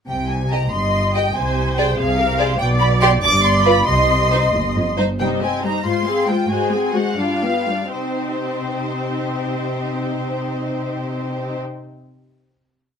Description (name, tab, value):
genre	quick classical-period movement for string orchestra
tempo	78-98 BPM (dotted quarters)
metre	6/8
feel	rubato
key	C minor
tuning	A4 = 437 Hz
part	clear symphonic violin section	melody	0.1-11.6 s	C5 to D6	-22 LUFS	left 1 dB	none
part	dark studio cello section	bass	0.1-11.6 s	Eb2 to C3	-24 LUFS	equal	none
part	rich symphonic double bass section	bass	0.1-5.1 s	G1 to C2	-23 LUFS	right 2 dB	none
part	rich symphonic violin section	second line	0.5-11.6 s	Eb4 to F5	-23 LUFS	equal	none
part	rich symphonic viola section	accompaniment	0.7-11.6 s	G3 to Eb5	-22 LUFS	equal	none
room	moderate studio reverb, RT60 0.8 s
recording	none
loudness	-17 LUFS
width	side -7 dB against mid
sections	0.1-5.2 A section; 5.2-7.9 coda; 7.9-10.8 final chord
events	slowing down 4.5-7.9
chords	0.1 Cm; 1.4 Dm7b5/C (rootless); 2.6 G/B (rootless); 3.2 G; 3.9 Cm; 5.8 Fm/Ab; 6.5 Ab7; 7.2 G7; 7.9 Cm